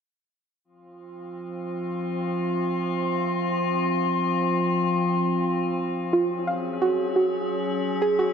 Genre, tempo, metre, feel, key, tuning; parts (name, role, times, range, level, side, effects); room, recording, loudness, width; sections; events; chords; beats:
drum and bass; free time; F phrygian; A4 = 441 Hz
metallic inharmonic drone; sustained chords; 1.1-8.3 s; F3 to Ab4; -24 LUFS; left 1 dB; chorus, built-in reverb
soft round pluck; arpeggios; 6.1-8.3 s; F4 to F5; -23 LUFS; right 3 dB; chorus, tape echo
moderate lush hall reverb, RT60 2.2 s; -22 LUFS; side -7 dB against mid
0.6-8.3 A section
0.6 F5; 6.1 Gb5
free time